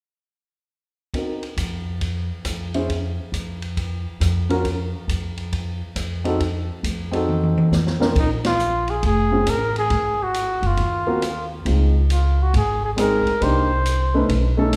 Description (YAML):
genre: jazz, small-group swing and bop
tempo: 137 BPM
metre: 4/4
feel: swing 66% on 8ths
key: Bb minor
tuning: A4 = 440 Hz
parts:
  - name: warm upright piano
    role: accompaniment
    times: 1.1-14.7 s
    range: Bb2 to C5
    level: -26 LUFS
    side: equal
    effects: none
  - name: open jazz drum kit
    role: drums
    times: 1.1-14.8 s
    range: hi-hat, kick drum, ride cymbal, rim click, snare drum, toms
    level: -29 LUFS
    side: equal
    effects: none
  - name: upright bass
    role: bass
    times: 1.6-14.8 s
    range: F1 to F2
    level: -25 LUFS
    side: equal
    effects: none
  - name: breathy trumpet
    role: melody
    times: 8.2-14.3 s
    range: Eb4 to C5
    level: -25 LUFS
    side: equal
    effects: none
room: wet recital hall reverb, RT60 1.4 s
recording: recorded in a church or concert hall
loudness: -21 LUFS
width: mono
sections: 1.1-8.2 A section; 8.2-14.8 B section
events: drum fill 7.3-8.2; band accent 8.4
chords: 1.1 Cm7b5; 2.9 N.C.; 6.4 F7b9; 8.2 Bb7(no3); 9.9 Ab7(no3); 11.7 Dbmaj9; 13.4 Cm7